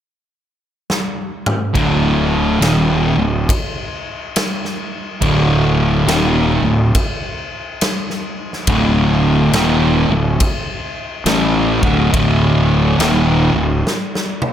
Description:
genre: stoner and doom metal.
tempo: 69 BPM.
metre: 4/4.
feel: swing 65% on 8ths.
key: unclear.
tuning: A4 = 440 Hz.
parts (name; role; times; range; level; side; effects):
big rock drum kit; drums; 0.9-14.5 s; kick drum, ride cymbal, snare drum, toms; -20 LUFS; equal; none.
fuzz guitar; riff; 1.7-13.8 s; D2 to A3; -14 LUFS; equal; distortion.
fuzz fingered electric bass; bass; 1.8-13.8 s; D1 to A1; -18 LUFS; equal; overdrive, tube saturation.
room: light reverb.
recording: none.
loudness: -13 LUFS.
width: side -10 dB against mid.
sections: 0.0-1.7 A section; 1.7-14.5 B section.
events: drum fill 0.9-1.7, 13.9-14.5.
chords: 0.0 N.C.; 1.7 D5.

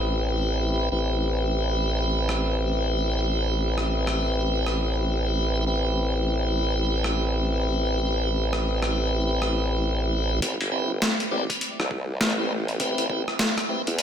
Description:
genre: glitch hop.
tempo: 101 BPM.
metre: 4/4.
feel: swing 61% on 16ths.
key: A minor.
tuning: A4 = 440 Hz.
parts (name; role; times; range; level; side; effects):
tonewheel organ; stabs; 0.0-13.8 s; C4 to D5; -26 LUFS; equal; overdrive, slow rotary speaker, sidechain pumping, diffuse ambient delay.
formant-sweep wobble bass; bass; 0.0-14.0 s; G1 to E2; -26 LUFS; equal; chorus, overdrive, high-pass filter.
boom bap sampler-style drum kit; drums; 2.3-14.0 s; hi-hat, rim click, snare drum; -27 LUFS; equal; high-pass filter on snare, high-pass filter on hats, high-pass filter on room.
electronic kick drum; drums; 10.4-13.2 s; none; -39 LUFS; equal; high-pass filter on kick, high-pass filter on room.
room: moderate plate reverb, RT60 3.4 s.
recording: dreamy mix soaked in reverb.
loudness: -22 LUFS.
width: side -9 dB against mid.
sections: 0.0-10.4 A section; 10.4-14.0 B section.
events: build-up 10.4-14.0.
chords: 0.0 Am9.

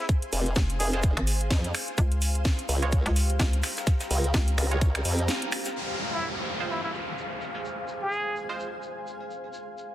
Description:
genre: bass house.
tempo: 127 BPM.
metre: 4/4.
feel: swing 57% on 16ths.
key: F minor.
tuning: A4 = 439 Hz.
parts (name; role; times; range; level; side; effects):
trumpet with plunger mute; melody; 0.0-1.0, 6.1-8.4 s; E4 to Ab4; -33 LUFS; equal; tape echo.
granular cloud pad; texture; 0.0-9.9 s; G4 to Bb5; -36 LUFS; equal; built-in reverb, sidechain pumping.
electronic kick drum; drums; 0.1-4.9 s; none; -24 LUFS; equal; none.
house drum kit; drums; 0.1-5.7 s; finger snaps, hi-hat, snare drum; -31 LUFS; equal; overdrive.
vintage brush drum kit; drums; 0.1-9.9 s; hi-hat, shaker, snare drum; -41 LUFS; left 1 dB; none.
formant-sweep wobble bass; bass; 0.3-5.3 s; F1 to F2; -26 LUFS; equal; chorus, sidechain pumping.
hollow knocking FM bass; bass; 0.6-4.6 s; F1 to Db2; -25 LUFS; equal; overdrive, sidechain pumping.
band-passed chord stab; stabs; 0.9-8.7 s; Ab3 to Db5; -37 LUFS; right 4 dB; chorus, sidechain pumping, tape echo.
downlifter; sound effects; 5.8-9.5 s; none; -34 LUFS; equal; none.
room: light reverb, small room ambience.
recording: dense, heavily limited modern master.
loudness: -24 LUFS.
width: side -13 dB against mid.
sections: 0.0-5.8 A section; 5.8-9.9 B section.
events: drop 0.0-5.8; break 5.3-5.8; band accent 5.3.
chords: 0.0 Fm; 2.0 Db; 5.8 Fm.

